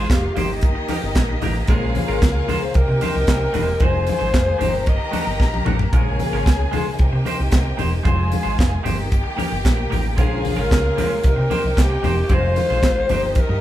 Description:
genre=disco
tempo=113 BPM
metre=4/4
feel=straight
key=Bb dorian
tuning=A4 = 442 Hz
part: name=breathy alto saxophone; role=melody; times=0.0-5.7, 10.2-13.6 s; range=G4 to Eb5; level=-23 LUFS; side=left 1 dB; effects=none
part: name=warm studio violin section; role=second line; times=0.0-13.6 s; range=Eb4 to Bb5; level=-29 LUFS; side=left 1 dB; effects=none
part: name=semi-hollow electric guitar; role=accompaniment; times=0.0-13.5 s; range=Ab3 to C5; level=-29 LUFS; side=right 3 dB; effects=none
part: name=clear studio string section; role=sustained chords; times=0.0-13.6 s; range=C3 to Ab4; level=-28 LUFS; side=left 2 dB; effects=none
part: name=fingered electric bass with an envelope filter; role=bass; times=0.0-13.6 s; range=E1 to C3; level=-22 LUFS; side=equal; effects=none
part: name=tight funk drum kit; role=drums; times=0.1-13.5 s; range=handclaps, hi-hat, kick drum, snare drum, toms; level=-20 LUFS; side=equal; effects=none
part: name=congas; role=percussion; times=0.1-13.5 s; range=none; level=-27 LUFS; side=left 2 dB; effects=none
room=moderate large studio reverb, RT60 0.9 s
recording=band playing live in one room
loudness=-16 LUFS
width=side -13 dB against mid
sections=0.0-13.6 A section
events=drum fill 5.4-5.9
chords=0.4 Eb/G; 1.7 Bbm7; 2.7 Cm7; 3.8 Fm7; 4.6 Eb/G; 5.9 Bbm7; 7.0 Cm7; 8.1 Fm7; 8.8 Eb/G; 10.2 Bbm7; 11.2 Cm7; 12.3 Fm7; 13.1 Eb/G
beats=0.09 0.62 1.15 | 1.68 2.21 2.74 3.27 | 3.80 4.33 4.87 5.40 | 5.93 6.46 6.99 7.52 | 8.05 8.58 9.11 9.64 | 10.18 10.71 11.24 11.77 | 12.30 12.83 13.36

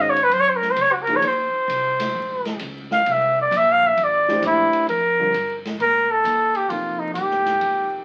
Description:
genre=modal jazz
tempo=132 BPM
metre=4/4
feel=swing 68% on 8ths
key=F mixolydian from 4.9 s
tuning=A4 = 440 Hz
part: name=breathy trumpet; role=melody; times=0.0-8.0 s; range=Eb4 to F5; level=-20 LUFS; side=equal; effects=none
part: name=dark baby grand piano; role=accompaniment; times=0.0-1.2, 4.3-8.0 s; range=C3 to C5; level=-31 LUFS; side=equal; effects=none
part: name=upright bass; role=bass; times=0.0-8.0 s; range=A1 to Bb2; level=-38 LUFS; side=equal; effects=none
part: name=swinging big-band drum kit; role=drums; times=0.2-7.8 s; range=hi-hat, kick drum, ride cymbal, snare drum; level=-36 LUFS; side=equal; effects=none
room=moderate club reverb, RT60 0.6 s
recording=very old 78 rpm record, vinyl crackle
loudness=-20 LUFS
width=mono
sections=0.0-4.9 A section; 4.9-8.0 B section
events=trumpet solo 0.0-4.9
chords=0.0 Ab9sus4; 3.1 C13; 4.9 F9sus4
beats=0.32 0.78 | 1.23 1.69 2.14 2.60 | 3.05 3.51 3.96 4.42 | 4.88 5.33 5.79 6.24 | 6.70 7.16 7.61

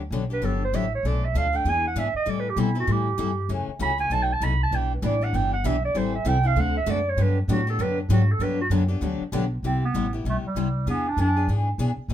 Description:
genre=acoustic string swing (jazz manouche)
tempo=195 BPM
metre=4/4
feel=swing 60% on 8ths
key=unclear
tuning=A4 = 436 Hz
part: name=upright bass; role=bass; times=0.0-12.1 s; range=G1 to B2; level=-24 LUFS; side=equal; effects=none
part: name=picked steel-string acoustic guitar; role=accompaniment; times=0.1-12.1 s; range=B2 to A4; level=-29 LUFS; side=left 6 dB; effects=none
part: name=clear clarinet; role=melody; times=0.3-11.5 s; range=G3 to B5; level=-26 LUFS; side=right 4 dB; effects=none
part: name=picked steel-string acoustic guitar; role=accompaniment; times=4.7-9.4 s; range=D3 to B4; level=-32 LUFS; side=right 5 dB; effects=none
room=moderate studio reverb, RT60 0.5 s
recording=band playing live in one room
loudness=-22 LUFS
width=side -11 dB against mid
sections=0.0-9.6 A section; 9.6-12.1 B section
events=clarinet solo 0.0-9.6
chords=0.0 Gmaj9; 1.0 Bm7b5; 1.7 E7; 2.3 Am7; 3.5 F#m7; 4.1 B7; 4.7 Em7; 5.9 Am7; 6.6 D7; 7.2 Gmaj9; 9.6 Cmaj7; 10.9 E7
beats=0.12 0.42 0.73 | 1.04 1.35 1.65 1.96 | 2.27 2.57 2.88 3.19 | 3.49 3.80 4.11 4.41 | 4.72 5.03 5.33 5.64 | 5.95 6.25 6.56 6.87 | 7.18 7.48 7.79 8.10 | 8.40 8.71 9.02 9.32 | 9.63 9.94 10.25 10.55 | 10.86 11.17 11.48 11.78 | 12.09

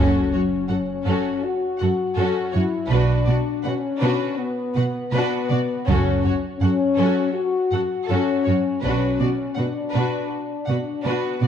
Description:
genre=cinematic, epic orchestral film score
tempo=81 BPM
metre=4/4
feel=straight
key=F# minor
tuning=A4 = 440 Hz
part: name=warm symphonic violin section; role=melody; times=0.0-11.5 s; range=A4 to F#5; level=-32 LUFS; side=left 3 dB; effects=none
part: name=clear symphonic violin section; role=second line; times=0.0-11.5 s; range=C#4 to B4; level=-32 LUFS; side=left 1 dB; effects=none
part: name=clear symphonic viola section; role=accompaniment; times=0.0-11.5 s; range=F#4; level=-29 LUFS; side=left 2 dB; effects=none
part: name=warm French horn section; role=sustained chords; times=0.0-11.5 s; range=B3 to F#4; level=-23 LUFS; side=left 4 dB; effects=none
part: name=dark symphonic double bass section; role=bass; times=0.0-9.2 s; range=F#1 to B1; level=-24 LUFS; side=right 3 dB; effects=none
part: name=rich symphonic cello section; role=bass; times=0.0-11.5 s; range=F#2 to B2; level=-24 LUFS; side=right 2 dB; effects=none
part: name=taiko ensemble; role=drums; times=5.9-7.3 s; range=none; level=-24 LUFS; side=equal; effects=none
room=moderate scoring stage reverb, RT60 1.5 s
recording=dark, warm production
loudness=-19 LUFS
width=side -8 dB against mid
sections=0.0-11.5 A section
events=band accent 0.0-0.7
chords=0.0 F#m; 2.9 Bm; 5.9 F#m; 8.8 Bm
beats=0.69 1.43 2.17 | 2.91 3.65 4.39 5.13 | 5.87 6.61 7.35 8.09 | 8.83 9.57 10.31 11.05

